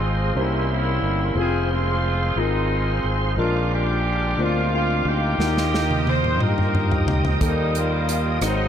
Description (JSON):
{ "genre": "slow gospel", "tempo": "60 BPM (dotted quarters)", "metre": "6/8", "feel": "straight", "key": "unclear", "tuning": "A4 = 439 Hz", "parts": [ { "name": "clear horn section", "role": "melody", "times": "0.0-8.7 s", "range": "Gb3 to C5", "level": "-24 LUFS", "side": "equal", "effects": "analog delay" }, { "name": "clear concert grand piano", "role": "accompaniment", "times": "0.0-8.7 s", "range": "Ab2 to C5", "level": "-27 LUFS", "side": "left 4 dB", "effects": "wide subtle chorus" }, { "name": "bright tonewheel organ", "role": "sustained chords", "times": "0.0-8.7 s", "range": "Db4 to Eb6", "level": "-30 LUFS", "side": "right 3 dB", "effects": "fast rotary speaker, chorus vibrato" }, { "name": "fingered electric bass", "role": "bass", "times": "0.0-8.7 s", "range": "F1 to G2", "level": "-23 LUFS", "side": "equal", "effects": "none" }, { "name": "natural country drum kit", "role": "drums", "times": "5.4-8.6 s", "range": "hi-hat, kick drum, rim click, snare drum, toms", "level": "-24 LUFS", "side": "equal", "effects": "none" } ], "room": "moderate huge ambient reverb, RT60 9.2 s", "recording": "dreamy mix soaked in reverb", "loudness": "-19 LUFS", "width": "side -9 dB against mid", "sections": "0.0-8.7 A section", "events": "drum fill 5.4-7.4", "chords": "0.3 C7b9; 1.4 Fm; 3.4 Bb7; 5.4 Eb" }